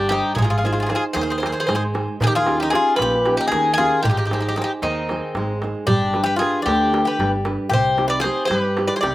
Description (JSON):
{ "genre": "greek folk, Greek bouzouki band", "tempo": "229 BPM (eighths)", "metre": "7/8", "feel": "straight", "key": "unclear", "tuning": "A4 = 440 Hz", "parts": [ { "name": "Greek bouzouki", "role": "melody", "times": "0.0-9.1 s", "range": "Eb4 to D5", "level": "-21 LUFS", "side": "left 1 dB", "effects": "none" }, { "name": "Greek bouzouki", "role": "second line", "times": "0.0-9.1 s", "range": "C4 to B4", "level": "-24 LUFS", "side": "left 3 dB", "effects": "none" }, { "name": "nylon-string guitar", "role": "accompaniment", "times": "0.0-9.1 s", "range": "Bb2 to C5", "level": "-24 LUFS", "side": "right 2 dB", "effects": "none" }, { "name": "upright bass", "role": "bass", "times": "0.0-9.1 s", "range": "G1 to G2", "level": "-26 LUFS", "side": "equal", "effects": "none" }, { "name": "darbuka", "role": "percussion", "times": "0.1-9.1 s", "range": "none", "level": "-26 LUFS", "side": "right 1 dB", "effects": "none" } ], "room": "little or no reverb", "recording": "recorded outdoors, with no room sound", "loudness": "-17 LUFS", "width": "side -16 dB against mid", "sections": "0.0-9.1 A section", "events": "none", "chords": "0.4 Ab; 2.2 Eb7; 4.0 Ab; 5.9 G; 7.7 Cm" }